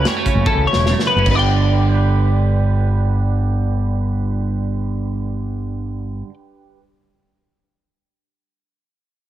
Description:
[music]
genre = math rock and midwest emo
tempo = 150 BPM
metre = 5/4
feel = straight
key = G lydian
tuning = A4 = 440 Hz
[part]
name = twangy electric guitar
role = accompaniment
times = 0.0-6.8 s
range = F#2 to B4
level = -24 LUFS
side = right 9 dB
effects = analog chorus
[part]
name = twelve-string electric guitar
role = arpeggios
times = 0.0-6.3 s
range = A4 to G5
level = -20 LUFS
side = left 5 dB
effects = analog chorus
[part]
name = growling picked electric bass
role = bass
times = 0.0-6.2 s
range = E1 to C#2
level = -17 LUFS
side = equal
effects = overdrive
[part]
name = modern studio drum kit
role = drums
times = 0.1-1.4 s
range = crash cymbal, hi-hat, kick drum, snare drum, toms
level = -22 LUFS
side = equal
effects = none
[sound]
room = light reverb, small room ambience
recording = none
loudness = -15 LUFS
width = side -12 dB against mid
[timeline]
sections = 0.0-1.3 A section; 1.3-5.3 B section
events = drum fill 0.5-1.3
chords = 0.0 F#m7; 1.3 G

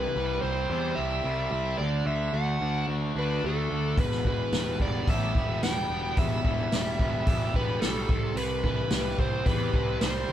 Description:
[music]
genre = classic rock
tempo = 110 BPM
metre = 4/4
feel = straight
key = E minor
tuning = A4 = 439 Hz
[part]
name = smooth overdriven lead guitar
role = melody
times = 0.0-10.3 s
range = A4 to G5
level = -31 LUFS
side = equal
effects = none
[part]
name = crunchy overdriven guitar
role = riff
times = 0.0-10.3 s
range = E2 to G4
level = -32 LUFS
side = equal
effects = none
[part]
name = fuzz picked electric bass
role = bass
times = 0.0-10.3 s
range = E1 to E2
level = -31 LUFS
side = equal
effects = overdrive
[part]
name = vintage drum kit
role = drums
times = 4.0-10.1 s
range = hi-hat, kick drum, snare drum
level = -27 LUFS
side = equal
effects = none
[sound]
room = moderate studio ambience, RT60 0.5 s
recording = band playing live in one room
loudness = -25 LUFS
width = side -11 dB against mid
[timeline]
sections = 0.0-10.3 A section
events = none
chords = 0.0 C; 1.8 D; 4.0 Em; 8.1 C

